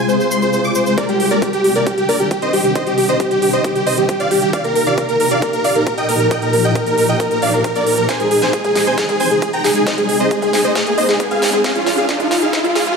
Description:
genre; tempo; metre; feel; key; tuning
uplifting trance; 135 BPM; 4/4; straight; C minor; A4 = 436 Hz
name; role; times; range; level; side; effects
dense compressed supersaw; melody; 0.0-12.9 s; F4 to D6; -15 LUFS; equal; sidechain pumping, dub echo
shimmering ambient pad; sustained chords; 0.0-13.0 s; Bb2 to Ab4; -20 LUFS; left 1 dB; chorus, built-in reverb, sidechain pumping
cabasa; percussion; 0.1-1.0 s; none; -28 LUFS; left 1 dB; none
big-room dance drum kit; drums; 1.0-13.0 s; hi-hat, snare drum, toms; -23 LUFS; right 2 dB; high-pass filter on hats, low-pass filter on hats, studio reverb, high-pass filter on snare, low-pass filter on snare, high-pass filter on toms, low-pass filter on toms
electronic kick drum; drums; 1.0-12.6 s; none; -24 LUFS; equal; high-pass filter on kick, studio reverb
riser; sound effects; 9.1-13.0 s; none; -22 LUFS; equal; none
room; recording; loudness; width
moderate recital hall reverb, RT60 1.5 s, digital ambience; high-pass filter; -13 LUFS; side -5 dB against mid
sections
1.0-13.0 A section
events
build-up 1.0-13.0; drum fill 8.1-13.0; riser 9.1-13.0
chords
0.0 Fm; 1.0 Cmadd9; 4.5 Ebadd9; 8.1 Ab; 11.6 Fm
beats
0.09 0.53 | 0.98 1.42 1.87 2.31 | 2.75 3.20 3.64 4.09 | 4.53 4.98 5.42 5.87 | 6.31 6.75 7.20 7.64 | 8.09 8.53 8.98 9.42 | 9.87 10.31 10.76 11.20 | 11.64 12.09 12.53

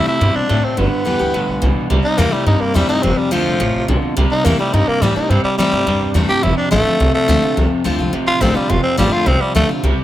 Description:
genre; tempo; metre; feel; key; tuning
rockabilly; 212 BPM; 4/4; straight; unclear; A4 = 439 Hz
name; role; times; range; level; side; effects
raspy tenor saxophone; melody; 0.0-9.7 s; F3 to G4; -18 LUFS; equal; analog delay
picked steel-string acoustic guitar; accompaniment; 0.0-10.0 s; F2 to G4; -21 LUFS; left 3 dB; none
electric guitar at the edge of break-up; riff; 0.0-10.0 s; F2 to A3; -21 LUFS; right 1 dB; wide subtle chorus
upright bass; bass; 0.0-10.0 s; F1 to A2; -18 LUFS; equal; none
room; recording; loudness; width
small room ambience; none; -13 LUFS; side -13 dB against mid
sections
0.0-1.9 A section; 1.9-10.0 B section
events
tenor saxophone solo 1.9-10.0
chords
0.0 C; 0.8 G; 1.9 C; 3.0 F; 4.2 C; 6.4 F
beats
0.21 0.49 | 0.78 1.06 1.34 1.62 | 1.91 2.19 2.47 2.76 | 3.04 3.32 3.60 3.89 | 4.17 4.45 4.74 5.02 | 5.30 5.58 5.87 6.15 | 6.43 6.72 7.00 7.28 | 7.57 7.85 8.13 8.42 | 8.70 8.98 9.27 9.55 | 9.84

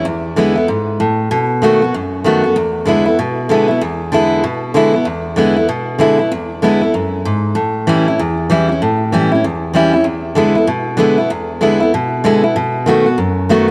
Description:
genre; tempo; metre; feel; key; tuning
rock; 192 BPM; 4/4; swing 62% on 8ths; E mixolydian; A4 = 440 Hz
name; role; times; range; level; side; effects
picked steel-string acoustic guitar; solo; 0.0-13.7 s; E2 to F#4; -15 LUFS; equal; none
room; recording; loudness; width
moderate plate reverb, RT60 2.9 s; faint mains hum; -15 LUFS; mono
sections
0.0-2.6 A section; 2.6-13.7 B section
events
none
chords
0.1 E7; 1.3 B7; 2.6 E7; 7.6 A7; 10.1 E7; 12.6 B7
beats
| 0.06 0.37 0.69 1.00 | 1.31 1.63 1.94 2.25 | 2.56 2.88 3.19 3.50 | 3.82 4.13 4.44 4.75 | 5.07 5.38 5.69 6.00 | 6.32 6.63 6.94 7.25 | 7.57 7.88 8.19 8.50 | 8.81 9.13 9.44 9.75 | 10.06 10.38 10.69 11.00 | 11.31 11.62 11.93 12.25 | 12.56 12.87 13.18 13.49

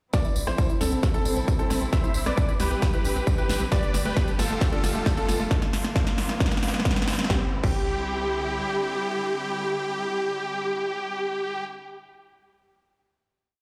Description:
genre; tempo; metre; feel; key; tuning
uplifting trance; 134 BPM; 4/4; straight; C major; A4 = 440 Hz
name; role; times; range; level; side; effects
dense compressed supersaw; melody; 0.1-11.6 s; C4 to E5; -31 LUFS; equal; sidechain pumping, low-pass filter, delay
bright concert grand piano; second line; 0.1-11.9 s; G4 to E5; -38 LUFS; equal; sidechain pumping, tape echo
rich studio string section; sustained chords; 0.1-11.6 s; D3 to G4; -38 LUFS; equal; sidechain pumping
unison pluck; arpeggios; 0.1-7.8 s; A3 to G4; -38 LUFS; equal; sidechain pumping, tape echo
big-room dance drum kit; drums; 0.1-7.8 s; crash cymbal, hi-hat, rim click, snare drum; -33 LUFS; equal; overdrive
electronic kick drum; drums; 0.1-7.8 s; none; -27 LUFS; equal; overdrive
tambourine; percussion; 0.1-5.5 s; none; -41 LUFS; equal; none
riser; sound effects; 3.3-7.3 s; none; -40 LUFS; equal; none
tight sequencer bass; bass; 0.2-8.6 s; G1 to D2; -34 LUFS; equal; sidechain pumping
room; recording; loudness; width
moderate lush hall reverb, RT60 1.9 s; played on a big sound system in a bare room, stone room reverb; -25 LUFS; mono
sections
0.1-7.3 build; 7.3-10.9 final chord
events
build-up 0.1-7.3; drum fill 0.1-7.3; filter sweep on supersaw synth 0.1-5.5; filter sweep on synth pluck 0.1-5.5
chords
0.1 Cadd9; 3.7 Gadd9; 5.5 Bbadd9; 7.3 Cadd9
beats
| 0.14 0.58 1.03 1.48 | 1.93 2.38 2.82 3.27 | 3.72 4.17 4.61 5.06 | 5.51 5.96 6.41 6.85 | 7.30 7.75 8.20 8.64 | 9.09 9.54 9.99 10.44

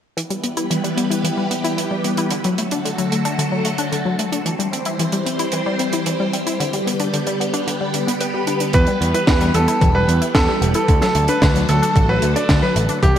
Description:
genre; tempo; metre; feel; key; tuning
italo disco; 112 BPM; 4/4; straight; E minor; A4 = 440 Hz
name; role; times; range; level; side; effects
phased string machine; sustained chords; 0.2-13.2 s; C3 to C5; -22 LUFS; equal; ensemble chorus, phaser
analog pluck; arpeggios; 0.2-13.2 s; D3 to B4; -23 LUFS; left 2 dB; chorus, ping-pong delay
tight funk drum kit; drums; 0.2-13.2 s; hi-hat, snare drum; -24 LUFS; right 2 dB; none
bright concert grand piano; melody; 8.7-13.2 s; G4 to D5; -19 LUFS; right 1 dB; none
overdriven picked electric bass; bass; 8.7-13.1 s; E1 to E2; -19 LUFS; equal; none
electronic kick drum; drums; 8.7-13.1 s; none; -17 LUFS; equal; none
room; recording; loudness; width
wet lush hall reverb, RT60 1.7 s, studio ambience; bright 1980s-style digital production, vinyl crackle; -16 LUFS; side -10 dB against mid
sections
0.2-13.2 A section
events
none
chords
0.2 Em; 2.3 D; 4.5 C; 6.6 G; 8.7 Em; 10.9 D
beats
| 0.17 0.71 1.24 1.78 | 2.31 2.85 3.38 3.92 | 4.46 4.99 5.53 6.06 | 6.60 7.13 7.67 8.21 | 8.74 9.28 9.81 10.35 | 10.88 11.42 11.96 12.49 | 13.03

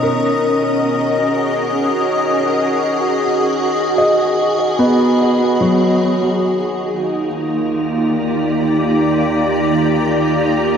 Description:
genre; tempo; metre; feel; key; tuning
ambient; 76 BPM; 4/4; straight; unclear; A4 = 439 Hz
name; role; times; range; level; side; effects
soft additive organ-like pad; sustained chords; 0.0-10.8 s; Eb3 to D#5; -15 LUFS; equal; ensemble chorus, built-in reverb
felt-muted upright piano; arpeggios; 0.0-7.3 s; F3 to Db6; -18 LUFS; equal; analog delay
pedal harmonium; drone; 0.0-10.8 s; Eb3 to Bb4; -31 LUFS; left 2 dB; none
wind-like tuned noise texture; texture; 0.0-10.8 s; Bb5; -31 LUFS; equal; built-in reverb
deep rumbling drone; bass; 7.5-10.8 s; Eb2; -39 LUFS; equal; built-in reverb
room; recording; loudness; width
wet spring reverb, RT60 2.3 s; echo-heavy mix, faint mains hum; -14 LUFS; side -7 dB against mid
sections
0.0-6.4 A section; 6.4-10.8 B section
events
fade-out on harmonium 0.0-6.4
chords
0.0 Ebmadd11; 6.4 Ebmaj7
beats
| 0.04 0.82 1.61 2.39 | 3.18 3.98 4.79 5.61 | 6.43 7.23 8.03 8.82 | 9.62 10.41

